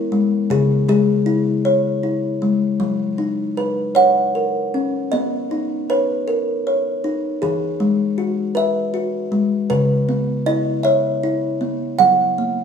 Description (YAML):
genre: children's music, lullaby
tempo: 52 BPM (dotted quarters)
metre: 6/8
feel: straight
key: B major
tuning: A4 = 436 Hz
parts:
  - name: kalimba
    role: solo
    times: 0.0-12.6 s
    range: C#3 to F#5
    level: -16 LUFS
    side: left 1 dB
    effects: none
room: wet large studio reverb, RT60 1.2 s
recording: band playing live in one room, small room ambience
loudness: -16 LUFS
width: side -7 dB against mid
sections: 0.0-5.1 A section; 5.1-12.6 B section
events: none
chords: 0.0 E; 0.5 C#m; 2.8 B/F#; 4.0 F#; 5.1 Badd9; 7.4 Eadd9; 9.7 C#m7; 12.0 F#